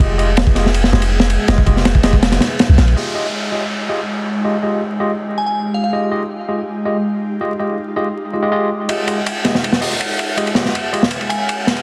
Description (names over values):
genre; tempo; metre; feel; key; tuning
drum and bass, jungle; 162 BPM; 4/4; straight; F minor; A4 = 440 Hz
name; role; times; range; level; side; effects
ethereal airy pad; sustained chords; 0.1-11.8 s; Ab3 to Ab4; -26 LUFS; equal; ensemble chorus, built-in reverb, phaser
overdriven tine electric piano; stabs; 0.0-11.0 s; Ab3 to Eb5; -24 LUFS; equal; vintage 12-bit sampler grit, low-pass filter, dub echo
long sustained 808-style bass; bass; 0.0-2.9 s; F1 to C2; -17 LUFS; equal; none
crunchy breakbeat drum kit; drums; 0.0-3.0, 8.9-11.8 s; hi-hat, kick drum, ride cymbal, snare drum; -19 LUFS; equal; none
wind-like tuned noise texture; texture; 0.0-3.0 s; Eb5 to Ab6; -36 LUFS; equal; none
downlifter; sound effects; 3.0-5.9 s; none; -30 LUFS; equal; none
glassy synth bell; melody; 5.4-5.9, 11.3-11.5 s; F5 to Ab5; -26 LUFS; equal; chorus, tremolo, dub echo
room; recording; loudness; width
light reverb, studio reverb; dense, heavily limited modern master, vinyl crackle; -17 LUFS; mono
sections
0.0-3.0 A section; 3.0-11.8 B section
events
filter sweep on tine electric piano 0.0-3.0; kick drops out 2.2-3.0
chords
0.0 Fm9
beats
| 0.00 0.38 0.74 1.11 | 1.49 1.86 2.23 2.60 | 2.97 3.34 3.71 4.08 | 4.45 4.82 5.19 5.56 | 5.93 6.30 6.67 7.04 | 7.41 7.78 8.15 8.52 | 8.89 9.26 9.63 10.00 | 10.38 10.74 11.12 11.49